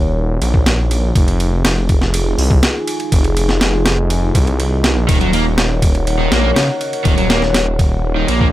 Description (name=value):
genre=breakbeat, breaks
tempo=122 BPM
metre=4/4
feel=straight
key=Eb dorian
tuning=A4 = 441 Hz
part: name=dark analog pad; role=sustained chords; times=0.0-8.5 s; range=Eb4 to Gb5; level=-21 LUFS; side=left 1 dB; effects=chorus, phaser, vintage 12-bit sampler grit, sidechain pumping
part: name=detuned saw bass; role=bass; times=0.0-8.5 s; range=Eb1 to C2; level=-16 LUFS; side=equal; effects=none
part: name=breakbeat sampler-style drum kit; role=drums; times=0.4-8.5 s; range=hi-hat, kick drum, ride cymbal, snare drum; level=-16 LUFS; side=equal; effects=none
part: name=overdriven semi-hollow guitar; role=riff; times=5.1-8.5 s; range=Db3 to Bb3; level=-18 LUFS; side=right 1 dB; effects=digital delay
room=light reverb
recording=none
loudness=-12 LUFS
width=side -14 dB against mid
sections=0.0-8.5 A section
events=none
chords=0.0 Ebm7; 1.2 Fm7; 5.1 Ebm7